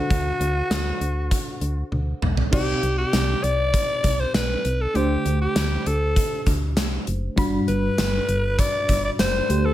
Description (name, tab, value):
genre	1980s-style pop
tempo	99 BPM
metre	4/4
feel	straight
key	G major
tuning	A4 = 435 Hz
part	raspy alto saxophone	melody	0.0-9.7 s	F#4 to D5	-25 LUFS	left 1 dB	none
part	mellow FM electric piano	accompaniment	0.0-9.7 s	G2 to B5	-28 LUFS	equal	chorus, tremolo
part	solid FM bass	bass	0.0-9.7 s	F#1 to D2	-24 LUFS	equal	none
part	gated 80s drum kit	drums	0.1-9.6 s	crash cymbal, hi-hat, kick drum, snare drum, tambourine, toms	-24 LUFS	equal	gated reverb
room	light reverb, small room ambience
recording	none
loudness	-20 LUFS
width	side -13 dB against mid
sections	0.0-2.5 A section; 2.5-9.7 B section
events	drum fill 1.9-2.5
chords	0.0 D7; 2.5 Cmadd9; 5.0 D7sus4; 7.4 Gmaj7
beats	| 0.10 0.71 1.32 1.92 | 2.53 3.13 3.74 4.35 | 4.95 5.56 6.17 6.77 | 7.38 7.98 8.59 9.20